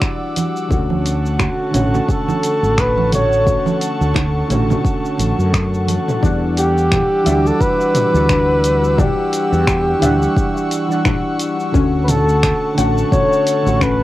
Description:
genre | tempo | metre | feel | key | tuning
sunset chillout | 87 BPM | 4/4 | swing 57% on 16ths | E dorian | A4 = 441 Hz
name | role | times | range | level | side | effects
mellow flugelhorn | melody | 0.0-14.0 s | F#4 to C#5 | -18 LUFS | equal | cassette tape, analog delay
soft electric-piano-like synth keys | accompaniment | 0.0-14.0 s | D3 to F#5 | -21 LUFS | moving between left 4 dB and right 3 dB | chorus, auto-pan, cassette tape, analog delay
airy breathy pad | sustained chords | 0.0-14.0 s | G3 to E6 | -25 LUFS | equal | chorus, cassette tape
deep house drum kit | drums | 0.0-14.0 s | cabasa, finger snaps, hi-hat, toms | -22 LUFS | equal | none
electronic kick drum | drums | 0.0-14.0 s | none | -19 LUFS | equal | none
congas | percussion | 0.4-6.0 s | none | -24 LUFS | right 5 dB | none
mellow fretless electric bass | bass | 0.7-14.0 s | A1 to F#2 | -18 LUFS | equal | tube saturation
soft round pluck | arpeggios | 6.2-14.0 s | C#4 to F#5 | -25 LUFS | left 6 dB | lush chorus, cassette tape, analog delay
room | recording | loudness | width
moderate booth ambience, RT60 0.2 s | home recording on cassette | -14 LUFS | side -15 dB against mid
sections
0.0-6.2 A section; 6.2-14.0 B section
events
none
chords
0.0 Em9; 0.7 Dmaj7; 6.2 Em9; 11.7 Dmaj7

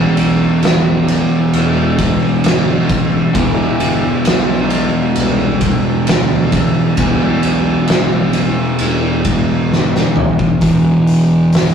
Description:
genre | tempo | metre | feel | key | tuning
stoner and doom metal | 66 BPM | 4/4 | straight | E minor | A4 = 440 Hz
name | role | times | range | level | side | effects
fuzz guitar | riff | 0.0-11.7 s | E2 to E3 | -14 LUFS | equal | distortion
fuzz fingered electric bass | bass | 0.0-11.7 s | E1 to D2 | -24 LUFS | left 1 dB | overdrive
oversized low-tuned drum kit | drums | 0.2-11.7 s | hi-hat, kick drum, ride cymbal, snare drum, toms | -16 LUFS | equal | none
room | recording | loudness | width
moderate studio reverb, RT60 0.5 s | rough rehearsal-room recording, warm saturation | -11 LUFS | side -7 dB against mid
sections
0.0-10.6 A section; 10.6-11.7 B section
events
drum fill 9.7-10.6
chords
0.0 E5; 10.6 Em

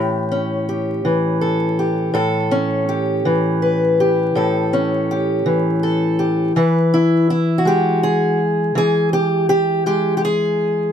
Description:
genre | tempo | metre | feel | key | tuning
acoustic country blues, solo or duo | 54 BPM (dotted quarters) | 12/8 | straight | A mixolydian | A4 = 441 Hz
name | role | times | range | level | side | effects
fingerpicked acoustic archtop guitar | solo | 0.0-10.9 s | A2 to C#5 | -15 LUFS | equal | none
room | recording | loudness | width
little or no reverb | close, detailed microphones, vinyl crackle | -15 LUFS | side -8 dB against mid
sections
0.0-10.9 A section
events
none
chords
0.0 A7; 6.6 E

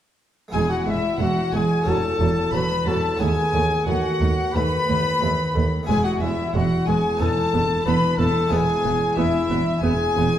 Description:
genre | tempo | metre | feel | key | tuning
classical, baroque-style concerto movement with solo episodes | 90 BPM | 4/4 | straight | E major | A4 = 445 Hz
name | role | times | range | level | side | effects
clear chamber violin section | melody | 0.5-10.4 s | E5 to B5 | -30 LUFS | left 3 dB | none
dark trumpet | melody | 0.5-10.4 s | E4 to B4 | -24 LUFS | left 1 dB | none
rich studio violin section | second line | 0.5-10.4 s | E5 to B5 | -28 LUFS | left 4 dB | none
harpsichord | accompaniment | 0.5-10.4 s | D#2 to F#4 | -27 LUFS | equal | none
rich studio viola section | accompaniment | 0.5-10.2 s | F#3 to B3 | -28 LUFS | right 1 dB | none
rich chamber double bass section | bass | 0.5-10.2 s | E1 to D#2 | -26 LUFS | right 2 dB | none
warm chamber cello section | bass | 0.5-10.2 s | D#2 to E2 | -27 LUFS | right 2 dB | none
room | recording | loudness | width
wet recital hall reverb, RT60 1.7 s | recorded in a church or concert hall | -19 LUFS | side -10 dB against mid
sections
0.5-10.4 A section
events
none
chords
0.5 E; 1.9 F#m7/E; 3.2 B7/D#; 5.9 E; 7.2 B7/E; 8.5 E

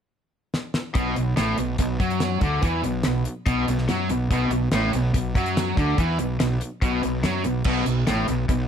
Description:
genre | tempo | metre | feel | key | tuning
classic rock | 143 BPM | 4/4 | straight | B minor | A4 = 440 Hz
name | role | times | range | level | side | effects
damped 70s drum kit | drums | 0.5-8.6 s | crash cymbal, hi-hat, kick drum, snare drum | -25 LUFS | equal | none
overdriven electric guitar | riff | 0.9-8.7 s | A2 to F#3 | -25 LUFS | left 5 dB | none
overdriven electric guitar | riff | 1.0-8.7 s | A2 to F#3 | -27 LUFS | right 11 dB | none
fuzz fingered electric bass | bass | 1.0-8.7 s | A1 to F#2 | -27 LUFS | equal | overdrive
room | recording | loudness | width
moderate studio reverb, RT60 0.7 s | none | -21 LUFS | side -8 dB against mid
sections
1.0-8.7 A section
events
drum fill 0.5-1.0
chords
0.0 N.C.; 1.0 Bm

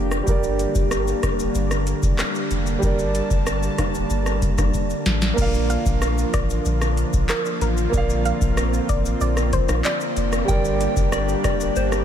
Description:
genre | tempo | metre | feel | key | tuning
dancehall | 94 BPM | 4/4 | straight | Bb major | A4 = 439 Hz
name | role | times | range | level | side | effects
warm grand piano | accompaniment | 0.0-12.0 s | G3 to F5 | -27 LUFS | right 3 dB | none
warm analog pad | sustained chords | 0.0-12.0 s | D3 to A5 | -26 LUFS | equal | chorus, sidechain pumping
punchy sub bass | bass | 0.0-12.0 s | F1 to Bb1 | -24 LUFS | equal | none
booming analog drum machine | drums | 0.1-12.0 s | crash cymbal, handclaps, hi-hat, kick drum, rim click, shaker, snare drum | -24 LUFS | equal | none
maracas and timbales | percussion | 0.3-12.0 s | none | -37 LUFS | left 6 dB | none
soft round pluck | melody | 5.7-10.3 s | Bb4 to F5 | -29 LUFS | left 1 dB | chorus, ping-pong delay
soft synth bell | second line | 10.5-12.0 s | C5 to G5 | -26 LUFS | left 3 dB | chorus, phaser, ping-pong delay
room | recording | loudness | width
moderate huge ambient reverb, RT60 7.2 s | dreamy mix soaked in reverb | -19 LUFS | side -9 dB against mid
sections
0.0-5.4 A section; 5.4-12.0 B section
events
drum fill 4.7-5.4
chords
0.0 Gm; 5.4 Bb; 10.5 Gm

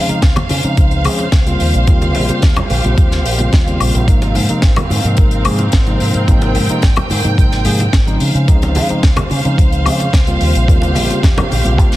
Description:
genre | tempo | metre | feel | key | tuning
nu-disco, nu disco | 109 BPM | 4/4 | straight | Ab major | A4 = 439 Hz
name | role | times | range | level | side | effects
tine electric piano | accompaniment | 0.0-12.0 s | C3 to Ab4 | -19 LUFS | equal | low-pass filter, tape echo
rich studio string section | sustained chords | 0.0-12.0 s | C4 to G5 | -21 LUFS | right 2 dB | sidechain pumping
fingered electric bass with an envelope filter | bass | 0.0-11.9 s | Ab1 to Db3 | -16 LUFS | equal | sidechain pumping
tight funk drum kit | drums | 0.1-12.0 s | hi-hat, snare drum, woodblock | -20 LUFS | left 3 dB | none
electronic kick drum | drums | 0.2-11.9 s | none | -12 LUFS | equal | overdrive
congas | percussion | 0.4-11.6 s | none | -22 LUFS | right 1 dB | none
room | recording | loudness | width
light reverb | heavily compressed radio sound, multiband compression | -11 LUFS | side -16 dB against mid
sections
0.0-12.0 A section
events
none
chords
0.0 Dbmaj7; 1.6 Eb13; 4.1 Ab69; 8.2 Dbmaj7; 10.4 Eb13

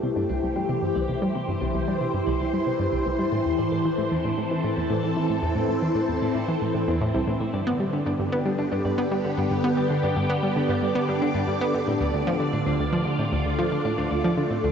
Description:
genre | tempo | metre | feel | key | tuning
ambient, sequencer-driven space music | 114 BPM | 4/4 | straight | unclear | A4 = 440 Hz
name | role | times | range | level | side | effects
phased string machine | sustained chords | 0.0-14.7 s | D3 to D5 | -25 LUFS | equal | ensemble chorus, phaser
clean electric guitar | arpeggios | 0.0-14.7 s | B3 to D5 | -38 LUFS | left 3 dB | auto-pan, tape echo
analog pluck | riff | 0.0-14.7 s | C2 to B3 | -26 LUFS | equal | chorus, tape echo
room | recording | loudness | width
wet huge ambient reverb, RT60 8.4 s | dark, warm production, nothing above 8.0 kHz | -22 LUFS | side -7 dB against mid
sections
0.0-14.7 A section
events
fade-in on clean electric guitar 0.0-14.7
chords
0.0 C6; 7.5 G; 11.7 Dm

